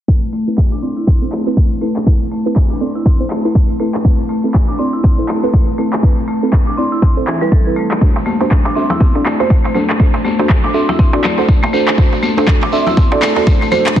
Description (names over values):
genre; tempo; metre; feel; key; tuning
afro house; 121 BPM; 4/4; swing 58% on 16ths; A dorian; A4 = 439 Hz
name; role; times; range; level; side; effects
marimba with hard mallets; arpeggios; 0.1-14.0 s; E3 to A4; -19 LUFS; left 1 dB; sidechain pumping, low-pass filter, digital delay
deep mellow chord stab; stabs; 0.1-14.0 s; C4 to E5; -18 LUFS; right 2 dB; chorus, sidechain pumping, digital delay
electronic kick drum; drums; 0.1-14.0 s; none; -12 LUFS; equal; overdrive
electronic handclaps; drums; 0.6-13.9 s; none; -23 LUFS; equal; overdrive
congas; percussion; 8.0-14.0 s; none; -23 LUFS; left 4 dB; none
shekere; percussion; 8.0-14.0 s; none; -31 LUFS; left 1 dB; none
darbuka; percussion; 8.2-13.9 s; none; -25 LUFS; right 2 dB; none
room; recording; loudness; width
light reverb, studio reverb; dense, heavily limited modern master, low-pass filter; -11 LUFS; side -11 dB against mid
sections
0.1-14.0 A section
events
filter sweep on marimba 0.1-14.0; filter sweep on synth stab 0.1-14.0; filter sweep 0.1-14.0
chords
0.1 Amadd9; 8.0 D7/A